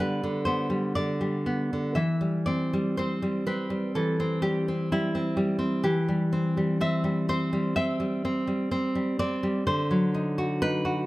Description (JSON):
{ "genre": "romantic piece for solo classical guitar", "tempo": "62 BPM", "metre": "4/4", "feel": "rubato", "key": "unclear", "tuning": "A4 = 440 Hz", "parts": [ { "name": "nylon-string guitar", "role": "solo", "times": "0.0-11.1 s", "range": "D3 to E5", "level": "-24 LUFS", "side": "equal", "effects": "none" } ], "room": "moderate recital hall reverb, RT60 1.4 s", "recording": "none", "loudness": "-24 LUFS", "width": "side -18 dB against mid", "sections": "0.0-11.1 A section", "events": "none", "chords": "0.0 G; 2.0 C/E; 9.7 D7b9" }